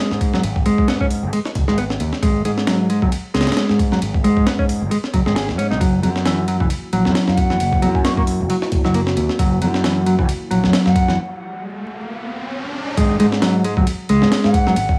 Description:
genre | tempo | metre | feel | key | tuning
breakbeat, breaks | 134 BPM | 4/4 | swing 56% on 16ths | unclear | A4 = 440 Hz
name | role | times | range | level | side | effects
mellow electric guitar | riff | 0.0-14.7 s | E3 to G#4 | -22 LUFS | equal | tube saturation, tape echo
growling fingered electric bass | bass | 0.1-15.0 s | E1 to G#2 | -22 LUFS | equal | overdrive
breakbeat sampler-style drum kit | drums | 0.1-15.0 s | hi-hat, kick drum, ride cymbal, snare drum | -23 LUFS | equal | small room reverb
dark analog pad | sustained chords | 6.8-12.9 s | A#3 to F#4 | -30 LUFS | equal | chorus, phaser, vintage 12-bit sampler grit, sidechain pumping
mellow hollow jazz flute | melody | 7.3-11.2, 14.4-15.0 s | F#5 to C#6 | -27 LUFS | equal | old record sound, vintage 12-bit sampler grit, tape echo
riser | sound effects | 11.2-13.0 s | none | -31 LUFS | equal | none
room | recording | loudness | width
digital ambience | vinyl crackle, small room ambience | -18 LUFS | mono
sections
0.0-13.0 A section; 13.0-15.0 B section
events
riser 11.2-13.0; break 11.2-13.0; drop 13.0-15.0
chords
0.0 N.C.; 5.8 F#7; 13.0 G#7(no3)

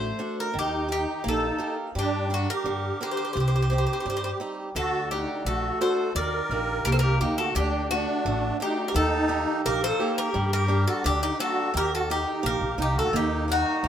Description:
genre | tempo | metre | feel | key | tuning
greek folk, Greek bouzouki band | 86 BPM | 2/4 | straight | unclear | A4 = 439 Hz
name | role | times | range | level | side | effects
Greek bouzouki | melody | 0.0-13.9 s | F#4 to D5 | -28 LUFS | left 2 dB | none
picked swing-style acoustic guitar | accompaniment | 0.0-13.9 s | C3 to F#5 | -31 LUFS | right 1 dB | none
upright bass | bass | 0.0-13.9 s | A1 to G2 | -28 LUFS | equal | none
musette accordion | second line | 0.6-13.9 s | D4 to Bb4 | -29 LUFS | right 1 dB | none
room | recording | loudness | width
light reverb | minimal, uncompressed stereo recording | -23 LUFS | side -9 dB against mid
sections
0.0-7.6 A section; 7.6-13.9 B section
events
none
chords
0.0 D; 0.6 Eb; 2.0 Gm; 3.4 Cm; 4.8 D; 6.2 Eb; 7.6 D; 9.0 Eb; 10.3 Gm; 11.7 Eb

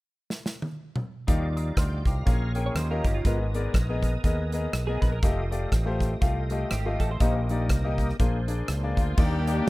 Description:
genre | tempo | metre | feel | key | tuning
uptempo gospel | 122 BPM | 4/4 | swing 59% on 8ths | Eb major | A4 = 441 Hz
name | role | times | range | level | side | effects
modern studio drum kit | drums | 0.3-9.6 s | crash cymbal, hi-hat, kick drum, rim click, snare drum, toms | -26 LUFS | equal | none
clear baby grand piano | accompaniment | 1.3-9.7 s | Ab2 to F6 | -31 LUFS | left 3 dB | none
tonewheel organ | sustained chords | 1.3-9.7 s | G3 to Bb5 | -37 LUFS | right 2 dB | slow rotary speaker, overdrive, chorus vibrato
fingered electric bass | bass | 1.3-9.6 s | F1 to Eb2 | -27 LUFS | equal | none
twelve-string electric guitar | second line | 2.7-7.3 s | F4 to Db5 | -36 LUFS | right 4 dB | analog chorus
muted studio string section | melody | 9.0-9.7 s | Bb3 to G4 | -30 LUFS | left 2 dB | none
room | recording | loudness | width
little or no reverb | rough home demo mix | -24 LUFS | side -20 dB against mid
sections
0.0-1.3 A section; 1.3-9.2 B section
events
drum fill 0.3-1.3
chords
0.0 N.C.; 1.3 Ebmaj9; 2.3 Bbm7; 2.8 Eb9; 3.2 Abmadd9; 5.2 F9; 7.2 Eb/Bb; 8.2 Bb9; 9.2 Ebmaj7

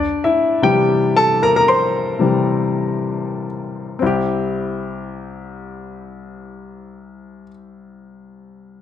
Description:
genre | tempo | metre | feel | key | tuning
pop | free time | none | none | C major | A4 = 440 Hz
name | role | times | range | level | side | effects
clear baby grand piano | accompaniment | 0.0-8.8 s | C2 to C6 | -17 LUFS | left 2 dB | none
room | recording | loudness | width
moderate large studio reverb, RT60 0.9 s, small room reverb | none | -15 LUFS | side -10 dB against mid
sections
0.0-4.0 A section; 4.0-8.2 B section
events
grand piano solo 0.0-4.0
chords
0.0 C

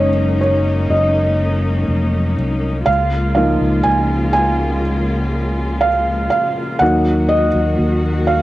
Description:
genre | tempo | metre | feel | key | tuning
pop | 61 BPM | 4/4 | straight | Db major | A4 = 436 Hz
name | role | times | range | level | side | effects
felt-muted upright piano | accompaniment | 0.0-8.4 s | F3 to Ab5 | -17 LUFS | right 1 dB | none
clear studio string section | sustained chords | 0.0-8.4 s | Db3 to Gb4 | -22 LUFS | left 1 dB | none
fingered electric bass | bass | 0.0-8.4 s | F1 to Eb2 | -18 LUFS | equal | none
room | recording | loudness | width
light reverb, studio reverb | home recording on cassette | -14 LUFS | side -16 dB against mid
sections
0.0-8.4 A section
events
felt piano solo 0.0-8.4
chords
0.0 Gb6; 2.9 Db6; 6.8 Ebm

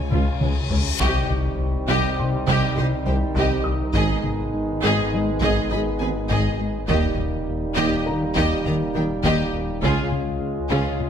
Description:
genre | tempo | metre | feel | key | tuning
cinematic, hybrid orchestral and electronic film score | 102 BPM | 5/4 | straight | C phrygian | A4 = 441 Hz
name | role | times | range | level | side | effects
rich studio violin section | melody | 0.0-11.0 s | Ab4 to C6 | -31 LUFS | left 3 dB | none
rich symphonic violin section | second line | 0.0-11.0 s | Db4 to Eb5 | -31 LUFS | left 2 dB | none
clear trombone section | sustained chords | 0.0-11.1 s | Db3 to Ab3 | -31 LUFS | right 5 dB | none
mellow French horn section | sustained chords | 0.0-11.1 s | Bb3 to F4 | -30 LUFS | left 2 dB | none
wide detuned saw bass | bass | 0.0-11.1 s | Eb1 to Db2 | -30 LUFS | equal | chorus
reverse cymbal and impact | sound effects | 0.2-3.9 s | none | -31 LUFS | left 3 dB | none
felt-muted upright piano | texture | 0.0-9.9 s | Bb4 to Eb6 | -37 LUFS | left 1 dB | none
rich symphonic viola section | accompaniment | 0.1-11.0 s | Ab3 to Ab4 | -28 LUFS | equal | none
resonant blip pluck | arpeggios | 0.1-10.9 s | C3 to Eb4 | -32 LUFS | right 2 dB | none
smooth gliding synth bass | riff | 0.1-11.1 s | C2 to Ab3 | -27 LUFS | left 2 dB | none
clear symphonic cello section | bass | 0.1-10.8 s | C2 to Eb3 | -30 LUFS | right 2 dB | none
clear symphonic double bass section | bass | 0.1-10.8 s | Ab1 to Eb2 | -30 LUFS | right 3 dB | none
mellow tuba | bass | 0.1-10.8 s | Ab1 to Eb2 | -30 LUFS | right 5 dB | none
taiko ensemble | drums | 0.1-10.4 s | none | -28 LUFS | equal | none
room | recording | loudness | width
moderate scoring stage reverb, RT60 1.5 s | none | -19 LUFS | side -8 dB against mid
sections
0.0-1.0 A section; 1.0-11.1 B section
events
drum fill 0.1-1.0; reverse cymbal 0.2-1.0; impact 1.0-3.9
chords
0.0 Db; 1.0 Cm; 3.9 Abm; 6.9 Eb; 9.8 Db

